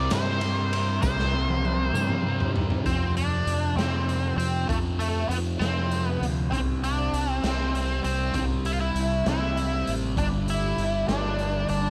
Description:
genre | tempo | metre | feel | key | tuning
psychedelic rock | 66 BPM (dotted quarters) | 6/8 | straight | unclear | A4 = 440 Hz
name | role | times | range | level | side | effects
octave-fuzz lead guitar | melody | 0.0-11.9 s | A3 to D5 | -31 LUFS | equal | wah, distortion, tape echo
combo organ | sustained chords | 0.0-2.8, 10.2-11.9 s | Bb3 to D5 | -41 LUFS | equal | subtle chorus
thick fuzz guitar | riff | 0.0-11.9 s | F2 to C4 | -32 LUFS | equal | distortion, phaser
fingered electric bass | bass | 0.0-11.9 s | G1 to G2 | -30 LUFS | equal | none
raw garage drum kit | drums | 0.1-11.8 s | hi-hat, kick drum, ride cymbal, snare drum, toms | -33 LUFS | equal | none
tambourine | percussion | 0.1-2.1 s | none | -47 LUFS | equal | none
room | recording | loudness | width
little or no reverb | none | -26 LUFS | mono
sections
0.0-2.9 A section; 2.9-11.9 B section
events
drum fill 1.0-2.9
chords
0.0 C7; 2.9 F5; 6.5 C; 10.2 G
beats
0.12 | 1.03 1.94 | 2.86 3.77 | 4.68 5.60 | 6.51 7.43 | 8.34 9.26 | 10.17 11.09

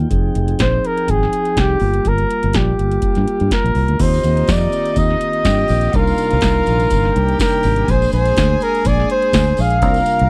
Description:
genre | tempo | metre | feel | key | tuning
disco | 124 BPM | 4/4 | swing 56% on 16ths | unclear | A4 = 441 Hz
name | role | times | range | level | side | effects
mellow tonewheel organ | sustained chords | 0.0-10.3 s | C3 to G5 | -25 LUFS | equal | slow rotary speaker
fingered electric bass | bass | 0.0-10.3 s | F1 to G2 | -20 LUFS | equal | none
electro analog drum machine | drums | 0.1-10.3 s | crash cymbal, hi-hat, kick drum, snare drum | -23 LUFS | equal | none
warm flugelhorn | melody | 0.6-10.3 s | G4 to F5 | -20 LUFS | equal | none
rich chamber string section | second line | 4.0-10.3 s | Eb4 to Bb5 | -30 LUFS | equal | none
tambourine | percussion | 4.0-10.2 s | none | -40 LUFS | equal | none
room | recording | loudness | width
little or no reverb | dry, close 1970s-style studio recording | -16 LUFS | mono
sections
0.0-4.0 A section; 4.0-10.3 B section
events
none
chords
0.1 Fm7; 1.8 Gm7; 4.0 Eb6; 5.9 Cm7; 7.9 Bb9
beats
| 0.11 0.59 1.08 1.57 | 2.05 2.54 3.03 3.51 | 4.00 4.49 4.97 5.46 | 5.94 6.43 6.91 7.40 | 7.88 8.37 8.85 9.34 | 9.82

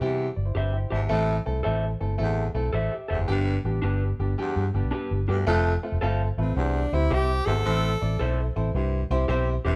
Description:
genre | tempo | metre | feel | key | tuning
soul | 110 BPM | 4/4 | swing 66% on 8ths | C major | A4 = 436 Hz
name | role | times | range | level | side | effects
warm upright piano | accompaniment | 0.0-9.8 s | G3 to A5 | -32 LUFS | equal | none
raspy baritone saxophone | riff | 0.0-9.8 s | D2 to A2 | -35 LUFS | equal | none
vintage muted fingered electric bass | bass | 0.0-9.8 s | E1 to C3 | -28 LUFS | equal | none
electric guitar through a small old amp | stabs | 0.5-9.7 s | D4 to F5 | -34 LUFS | equal | none
breathy tenor saxophone | melody | 6.4-8.6 s | C4 to A4 | -31 LUFS | equal | none
room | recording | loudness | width
light reverb | band playing live in one room | -26 LUFS | mono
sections
0.0-5.5 A section; 5.5-9.8 B section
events
upright piano fill 0.3-1.1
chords
0.0 C; 1.1 Am; 3.3 G; 5.5 F; 6.6 C; 7.7 Am; 8.7 C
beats
0.01 0.56 | 1.10 1.65 2.20 2.74 | 3.29 3.83 4.38 4.93 | 5.47 6.02 6.56 7.11 | 7.65 8.20 8.74 9.29

